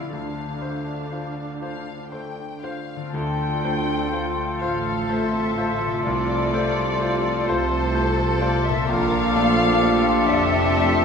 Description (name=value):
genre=cinematic, emotional film score for orchestra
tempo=42 BPM (dotted quarters)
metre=6/8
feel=rubato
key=D minor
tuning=A4 = 440 Hz
part: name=muted symphonic violin section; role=melody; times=0.0-11.0 s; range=F4 to G5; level=-32 LUFS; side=left 4 dB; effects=none
part: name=bright concert grand piano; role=accompaniment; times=0.0-11.0 s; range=Bb1 to D5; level=-29 LUFS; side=left 2 dB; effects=none
part: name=muted symphonic viola section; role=accompaniment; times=0.0-11.0 s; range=C3 to F4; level=-32 LUFS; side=right 2 dB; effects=none
part: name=concert harp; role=arpeggios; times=0.0-11.0 s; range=Bb2 to A5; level=-34 LUFS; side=left 6 dB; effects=none
part: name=muted symphonic cello section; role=bass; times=0.0-11.0 s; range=F2 to D3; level=-28 LUFS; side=right 3 dB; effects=none
part: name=mellow hollow silver concert flute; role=second line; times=3.1-11.0 s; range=C6 to D6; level=-30 LUFS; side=left 3 dB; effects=none
part: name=muted symphonic violin section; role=second line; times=3.1-11.0 s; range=C5 to G5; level=-26 LUFS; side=left 3 dB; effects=none
part: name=warm clarinet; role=second line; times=3.1-11.0 s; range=F4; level=-30 LUFS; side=right 2 dB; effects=none
part: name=warm oboe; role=second line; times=3.1-11.0 s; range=A4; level=-30 LUFS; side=right 1 dB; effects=none
part: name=dark French horn section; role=sustained chords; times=3.1-11.0 s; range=F3 to F4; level=-28 LUFS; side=left 1 dB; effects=none
part: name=muted symphonic double bass section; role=bass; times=3.1-11.0 s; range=F1 to D2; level=-29 LUFS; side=right 2 dB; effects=none
room=wet scoring stage reverb, RT60 1.7 s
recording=minimal, uncompressed stereo recording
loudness=-19 LUFS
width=side -6 dB against mid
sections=0.0-3.1 A section; 3.1-11.0 A section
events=none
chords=0.1 Dm7; 6.0 F/C; 8.9 Bbmaj7